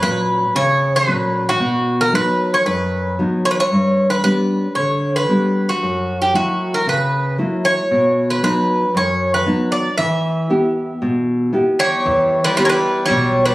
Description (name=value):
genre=greek folk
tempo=115 BPM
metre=4/4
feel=straight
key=E dorian sharp4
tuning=A4 = 435 Hz
part: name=Greek bouzouki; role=melody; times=0.0-13.5 s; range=F#4 to E5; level=-17 LUFS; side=equal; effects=none
part: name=nylon-string guitar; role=accompaniment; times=0.0-13.5 s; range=F#2 to G4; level=-18 LUFS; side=equal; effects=none
part: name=Greek bouzouki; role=second line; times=11.8-13.5 s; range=G3 to A#3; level=-22 LUFS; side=left 1 dB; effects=none
part: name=upright bass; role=bass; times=12.1-13.5 s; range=B1 to E2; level=-24 LUFS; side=equal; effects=none
room=moderate plate reverb, RT60 2.4 s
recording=recorded on a phone in the room, club reverb, compression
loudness=-15 LUFS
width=side -18 dB against mid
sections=0.0-12.1 A section; 12.1-13.5 A section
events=none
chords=0.0 F#; 1.6 B; 3.7 G; 5.8 F#7; 7.9 B; 10.0 Em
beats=0.02 0.55 1.07 | 1.60 2.13 2.66 3.18 | 3.71 4.24 4.76 5.29 | 5.81 6.33 6.86 7.38 | 7.90 8.42 8.94 9.46 | 9.98 10.50 11.02 11.54 | 12.06 12.58 13.09